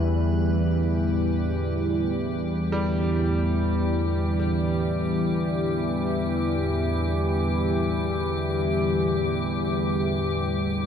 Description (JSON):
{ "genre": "dark ambient drone", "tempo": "free time", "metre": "none", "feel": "none", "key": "E minor", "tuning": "A4 = 440 Hz", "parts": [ { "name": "sweeping resonant pad", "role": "sustained chords", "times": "0.0-10.9 s", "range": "E2 to B3", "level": "-28 LUFS", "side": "left 1 dB", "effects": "chorus, shimmer reverb" }, { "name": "analog drone", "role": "drone", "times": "0.0-10.9 s", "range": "E2 to E3", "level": "-25 LUFS", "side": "equal", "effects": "chorus" }, { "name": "icy glass pad", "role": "texture", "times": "0.0-10.9 s", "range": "G4 to B4", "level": "-31 LUFS", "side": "left 2 dB", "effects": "chorus, built-in reverb, shimmer reverb" }, { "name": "bright concert grand piano", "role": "arpeggios", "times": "2.7-10.9 s", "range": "G3", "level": "-36 LUFS", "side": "right 2 dB", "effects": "ping-pong delay, shimmer reverb" } ], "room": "wet huge ambient reverb, RT60 9.0 s", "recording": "dark, warm production", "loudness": "-22 LUFS", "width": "side -8 dB against mid", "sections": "0.0-10.9 A section", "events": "fade-in on grand piano 0.0-10.9", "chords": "0.0 Em", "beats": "free time" }